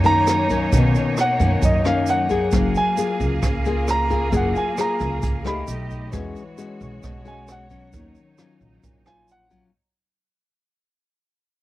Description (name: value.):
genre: bossa nova.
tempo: 133 BPM.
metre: 4/4.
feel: straight.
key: Eb minor.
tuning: A4 = 440 Hz.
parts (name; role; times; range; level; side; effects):
warm concert grand piano; melody; 0.0-9.6 s; D#5 to Cb6; -22 LUFS; right 1 dB; cassette tape.
nylon-string guitar; accompaniment; 0.0-9.7 s; F#2 to Ab4; -24 LUFS; left 4 dB; cassette tape.
clear studio string section; sustained chords; 0.0-9.7 s; Gb3 to F5; -30 LUFS; right 1 dB; cassette tape.
upright bass; bass; 0.0-9.7 s; Gb1 to F#2; -24 LUFS; right 1 dB; none.
egg shaker; percussion; 0.0-9.7 s; none; -40 LUFS; right 11 dB; none.
jazz brush drum kit; drums; 0.1-9.6 s; hi-hat, kick drum, rim click; -25 LUFS; right 1 dB; none.
room: little or no reverb.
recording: home recording on cassette.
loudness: -18 LUFS.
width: side -16 dB against mid.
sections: 0.0-9.7 A section.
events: fade-out 0.0-9.7; grand piano solo 0.0-9.7.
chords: 0.0 Bmaj9; 2.5 Gbmaj9; 5.7 Baug7; 6.1 E69; 7.9 Ebm9.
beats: 0.27 | 0.72 1.17 1.62 2.07 | 2.52 2.97 3.42 3.87 | 4.32 4.78 5.23 5.68 | 6.13 6.58 7.03 7.48 | 7.93 8.38 8.83 9.28.